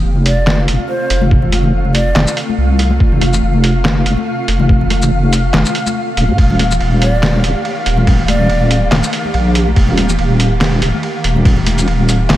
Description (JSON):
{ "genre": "deep dubstep", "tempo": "142 BPM", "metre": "4/4", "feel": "swing 55% on 16ths, half-time", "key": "unclear", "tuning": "A4 = 445 Hz", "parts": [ { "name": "granular cloud pad", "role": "sustained chords", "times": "0.0-12.4 s", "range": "C3 to G4", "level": "-22 LUFS", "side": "right 1 dB", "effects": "built-in reverb" }, { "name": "deep soft wobble bass", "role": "bass", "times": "0.0-12.4 s", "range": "Eb1 to F2", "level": "-13 LUFS", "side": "equal", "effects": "chorus" }, { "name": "flickering grainy texture", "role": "texture", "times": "0.0-12.4 s", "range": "F5", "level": "-23 LUFS", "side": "equal", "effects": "built-in reverb" }, { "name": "congas", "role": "percussion", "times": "0.2-12.4 s", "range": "none", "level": "-21 LUFS", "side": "left 4 dB", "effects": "dub echo" }, { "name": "breathy ney", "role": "melody", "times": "0.3-2.4, 7.0-8.9 s", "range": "C5 to D5", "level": "-22 LUFS", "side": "right 1 dB", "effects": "dub echo" }, { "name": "trip hop sampler-style drum kit", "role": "drums", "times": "0.3-12.4 s", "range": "handclaps, hi-hat, ride cymbal, shaker, snare drum", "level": "-18 LUFS", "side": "right 1 dB", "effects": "studio reverb" }, { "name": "electronic kick drum", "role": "drums", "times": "1.3-11.5 s", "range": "none", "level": "-12 LUFS", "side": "equal", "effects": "studio reverb" } ], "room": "digital ambience", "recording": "none", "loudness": "-11 LUFS", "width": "side -14 dB against mid", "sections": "0.0-12.4 A section", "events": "none", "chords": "0.0 F; 6.4 Eb" }